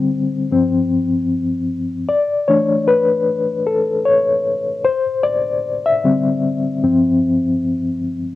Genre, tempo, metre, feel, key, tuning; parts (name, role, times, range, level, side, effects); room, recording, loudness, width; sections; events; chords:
R&B; 76 BPM; 4/4; swing 59% on 16ths; A4 = 440 Hz
reed electric piano; solo; 0.0-8.4 s; G2 to E5; -15 LUFS; left 2 dB; fast tremolo, cassette tape
wet studio reverb, RT60 0.5 s; home recording on cassette; -15 LUFS; side -15 dB against mid
0.0-8.4 A section
reed electric piano solo 0.0-8.4
0.0 D7sus4; 0.5 G7sus4; 2.1 E7sus4; 4.8 D9sus4; 6.8 G7sus4